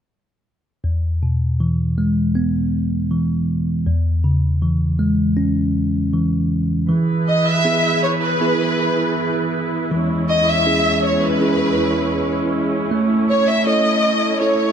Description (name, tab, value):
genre	pop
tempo	80 BPM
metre	4/4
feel	straight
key	E major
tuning	A4 = 440 Hz
part	bell-like tine electric piano	accompaniment	0.8-14.7 s	E2 to C#5	-18 LUFS	right 1 dB	none
part	muted studio string section	sustained chords	6.9-14.7 s	E2 to B4	-22 LUFS	equal	none
part	warm studio violin section	melody	7.3-14.7 s	B4 to E5	-19 LUFS	equal	none
room	wet concert hall reverb, RT60 2.4 s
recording	dark, warm production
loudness	-16 LUFS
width	side -8 dB against mid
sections	0.8-6.9 A section; 6.9-14.7 B section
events	none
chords	0.8 E; 3.9 C#m/E; 6.9 E; 9.9 C#m/E; 12.9 A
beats	| 0.84 1.60 2.36 3.11 | 3.86 4.62 5.37 6.13 | 6.89 7.65 8.41 9.17 | 9.91 10.66 11.41 12.16 | 12.91 13.66 14.41